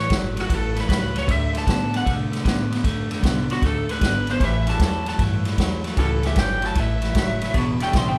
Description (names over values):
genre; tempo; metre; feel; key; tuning
electric blues shuffle; 153 BPM; 4/4; swing 67% on 8ths; A mixolydian; A4 = 440 Hz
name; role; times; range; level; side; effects
lead guitar through a small cranked amp; melody; 0.0-8.2 s; F#4 to C6; -29 LUFS; equal; overdrive
electric guitar at the edge of break-up; riff; 0.0-8.2 s; E2 to B3; -29 LUFS; equal; none
upright bass; bass; 0.0-8.2 s; E1 to C3; -29 LUFS; equal; none
vintage drum kit; drums; 0.1-8.1 s; kick drum, ride cymbal, snare drum; -25 LUFS; equal; none
warm horn section; stabs; 4.4-8.2 s; C#4 to E5; -36 LUFS; equal; none
room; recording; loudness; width
moderate large studio reverb, RT60 0.8 s; band playing live in one room; -22 LUFS; mono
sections
0.0-8.2 A section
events
lead electric guitar solo 0.0-8.2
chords
0.0 A13; 1.3 D5; 4.4 A13; 7.5 E13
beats
0.10 0.49 0.88 | 1.28 1.67 2.06 2.45 | 2.84 3.23 3.62 4.02 | 4.41 4.80 5.19 5.58 | 5.97 6.37 6.76 7.15 | 7.54 7.93